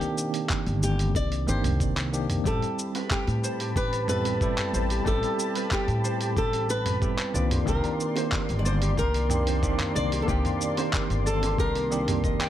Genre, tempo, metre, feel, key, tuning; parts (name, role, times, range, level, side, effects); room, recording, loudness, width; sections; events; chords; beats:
sunset chillout; 92 BPM; 4/4; straight; A4 = 443 Hz
flamenco guitar; melody; 0.0-12.5 s; G4 to D5; -31 LUFS; left 1 dB; ping-pong delay
bell-like tine electric piano; accompaniment; 0.0-12.5 s; Eb3 to A4; -30 LUFS; moving between left 4 dB and right 5 dB; medium stereo tremolo, auto-pan
dusty soul sampler-style drum kit; drums; 0.0-12.5 s; handclaps, hi-hat, shaker, toms; -32 LUFS; equal; overdrive, small room ambience
electronic kick drum; drums; 0.5-12.4 s; -29 LUFS; equal; small room ambience
upright bass; bass; 0.7-12.3 s; G1 to A2; -28 LUFS; equal
lush unison pad; sustained chords; 2.5-12.5 s; Bb3 to C6; -35 LUFS; equal; chorus
concert harp; arpeggios; 2.5-12.5 s; G4 to G5; -37 LUFS; equal; digital delay
bongos; percussion; 3.0-3.1, 7.5-11.6 s; -38 LUFS; left 2 dB
light reverb, small room reverb; -23 LUFS; side -12 dB against mid
0.0-12.5 A section
0.0 Cm9; 2.5 Am9; 7.3 Cm9
0.50 1.15 1.80 | 2.45 3.10 3.76 4.41 | 5.06 5.71 6.37 7.02 | 7.67 8.32 8.97 9.63 | 10.28 10.93 11.58 12.23